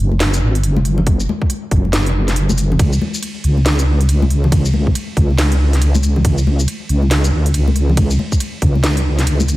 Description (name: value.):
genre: deep dubstep.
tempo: 139 BPM.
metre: 4/4.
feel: swing 62% on 16ths, half-time.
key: unclear.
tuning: A4 = 440 Hz.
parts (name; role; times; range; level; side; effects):
wobble bass; bass; 0.0-9.6 s; F#1 to D2; -14 LUFS; equal; chorus.
congas; percussion; 0.1-9.5 s; none; -23 LUFS; left 2 dB; dub echo.
garage drum kit; drums; 0.2-9.6 s; hi-hat, ride cymbal, shaker, snare drum; -22 LUFS; equal; none.
electronic kick drum; drums; 1.1-8.7 s; none; -17 LUFS; equal; none.
room: little or no reverb.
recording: none.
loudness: -13 LUFS.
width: side -17 dB against mid.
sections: 0.0-9.6 A section.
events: none.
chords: none.